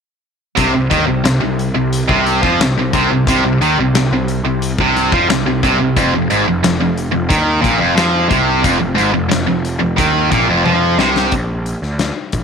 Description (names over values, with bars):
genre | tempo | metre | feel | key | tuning
classic rock | 89 BPM | 4/4 | straight | unclear | A4 = 435 Hz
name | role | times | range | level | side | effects
tight distorted guitar | riff | 0.6-11.3 s | F2 to F3 | -14 LUFS | equal | distortion
fuzz picked electric bass | bass | 0.6-12.4 s | F1 to F2 | -20 LUFS | right 1 dB | overdrive
huge arena drum kit | drums | 0.6-12.4 s | hi-hat, kick drum, snare drum, toms | -20 LUFS | left 3 dB | none
room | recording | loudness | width
light reverb, small room reverb | 1960s-style stereo | -12 LUFS | side -6 dB against mid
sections
0.6-11.3 A section; 11.3-12.4 B section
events
drum fill 10.7-11.3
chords
0.6 N.C.; 6.0 F5; 11.3 Bb